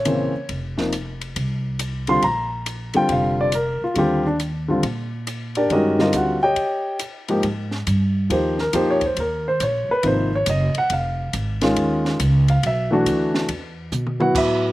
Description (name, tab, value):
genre	jazz piano trio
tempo	138 BPM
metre	4/4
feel	swing 65% on 8ths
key	Eb major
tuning	A4 = 440 Hz
part	dark grand piano	melody	0.0-14.7 s	Ab2 to C6	-19 LUFS	equal	none
part	upright bass	bass	0.0-14.7 s	F1 to B2	-24 LUFS	right 1 dB	none
part	compact cocktail drum kit	drums	0.1-14.5 s	crash cymbal, hi-hat, kick drum, ride cymbal, snare drum, toms	-30 LUFS	equal	none
room	little or no reverb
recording	recorded outdoors, with no room sound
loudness	-19 LUFS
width	side -16 dB against mid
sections	0.0-7.4 A section; 7.4-14.7 B section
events	break 6.6-7.4; drum fill 13.9-14.3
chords	0.5 F5; 2.2 Bbadd9; 4.0 Ebmaj7; 6.6 Eb7; 7.4 Ab5; 9.2 Eb5; 10.0 Ab7; 10.9 Db; 12.6 Bm7; 13.5 E5